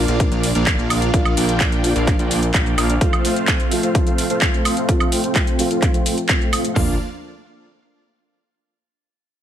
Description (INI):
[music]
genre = EDM, festival progressive house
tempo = 128 BPM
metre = 4/4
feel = straight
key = Bb major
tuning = A4 = 439 Hz
[part]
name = dark baby grand piano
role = accompaniment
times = 0.0-6.9 s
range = F3 to F4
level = -25 LUFS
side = right 1 dB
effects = sidechain pumping, digital delay
[part]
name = dense compressed supersaw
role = riff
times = 0.0-6.9 s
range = A3 to G5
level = -22 LUFS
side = equal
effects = sidechain pumping, low-pass filter, digital delay
[part]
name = fat analog bass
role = bass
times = 0.0-3.0, 6.8-7.0 s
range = Bb1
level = -22 LUFS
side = equal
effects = sidechain pumping
[part]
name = sub drop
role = sound effects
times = 0.5-1.1 s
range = none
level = barely audible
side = none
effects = none
[part]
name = house drum kit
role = drums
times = 0.1-6.7 s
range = handclaps, hi-hat, shaker, woodblock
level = -22 LUFS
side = right 1 dB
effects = none
[part]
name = big-room dance drum kit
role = drums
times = 0.2-6.9 s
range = hi-hat, kick drum, toms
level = -19 LUFS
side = equal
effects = overdrive
[sound]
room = light reverb, digital ambience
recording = none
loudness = -16 LUFS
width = side -10 dB against mid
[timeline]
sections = 0.0-6.8 A section; 6.8-8.6 B section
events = impact 0.0-1.1; filter sweep on supersaw synth 0.0-6.8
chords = 0.0 Bb; 3.0 F; 6.8 Bb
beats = 0.20 0.67 | 1.14 1.61 2.08 2.54 | 3.01 3.48 3.95 4.42 | 4.89 5.36 5.83 6.29 | 6.76